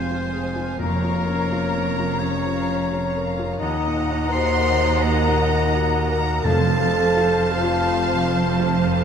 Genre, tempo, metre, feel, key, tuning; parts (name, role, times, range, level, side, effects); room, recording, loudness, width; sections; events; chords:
cinematic; 85 BPM; 4/4; rubato; Bb minor; A4 = 440 Hz
clear symphonic violin section; melody; 0.0-9.0 s; Ab5 to Bb5; -31 LUFS; left 2 dB
mellow clarinet; second line; 0.0-9.0 s; Db5 to Gb5; -32 LUFS; left 1 dB
mellow flute section; second line; 0.0-9.0 s; Ab5 to Bb5; -31 LUFS; left 6 dB
rich symphonic violin section; second line; 0.0-8.9 s; Bb4 to C6; -33 LUFS; left 2 dB
warm oboe; second line; 0.0-8.9 s; Bb4 to C6; -30 LUFS; right 1 dB
clear grand piano; accompaniment; 0.0-9.0 s; Eb2 to Bb4; -28 LUFS; left 3 dB
clear studio viola section; accompaniment; 0.0-9.0 s; C5 to Gb5; -30 LUFS; right 1 dB
dark French horn section; sustained chords; 0.0-9.0 s; Bb3 to C5; -25 LUFS; left 2 dB
clear symphonic double bass section; bass; 0.0-9.0 s; F1 to Eb2; -28 LUFS; right 3 dB
rich symphonic cello section; bass; 0.0-9.0 s; Eb2 to F2; -25 LUFS; right 3 dB
timpani; percussion; 0.8-1.8, 6.4-7.5 s; F2; -27 LUFS; equal
wet scoring stage reverb, RT60 1.7 s; dark, warm production; -18 LUFS; side -7 dB against mid
0.0-9.0 A section
0.0 Db/F (rootless); 0.8 Bbm/F; 3.6 Ebm; 6.5 F